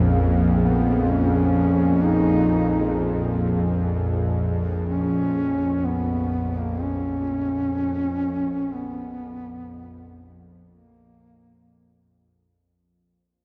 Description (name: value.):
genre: dark ambient drone.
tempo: free time.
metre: none.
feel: none.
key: Bb phrygian.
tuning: A4 = 441 Hz.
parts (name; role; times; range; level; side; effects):
dark duduk; melody; 0.0-12.1 s; Bb3 to Eb4; -27 LUFS; equal; delay.
dark analog pad; sustained chords; 0.0-12.6 s; F3 to F5; -32 LUFS; equal; chorus.
bowed-like drone; drone; 0.0-12.7 s; Bb1 to F2; -25 LUFS; equal; built-in reverb.
room: wet cathedral reverb, RT60 5.2 s.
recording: in a vast, echoing space.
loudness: -22 LUFS.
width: mono.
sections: 0.0-12.6 A section.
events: fade-out on analog synth pad 0.0-12.6; fade-out 2.4-12.6.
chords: 0.0 Bb5.